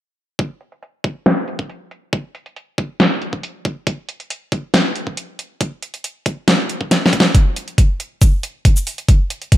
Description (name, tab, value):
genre	heavy wobble dubstep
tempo	138 BPM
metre	4/4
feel	half-time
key	none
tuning	none
part	dubstep drum kit	drums	0.4-9.6 s	hi-hat, shaker, snare drum	-17 LUFS	equal	low-pass filter on hats, low-pass filter on snare, low-pass filter on perc
part	electronic kick drum	drums	0.4-9.6 s	none	-14 LUFS	equal	overdrive, high-pass filter on kick
room	light reverb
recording	none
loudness	-16 LUFS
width	side -14 dB against mid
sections	0.4-7.3 A section; 7.3-9.6 B section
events	filter sweep on drum 0.4-7.3; drum fill 6.9-7.3; build-up 7.3-9.6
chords	none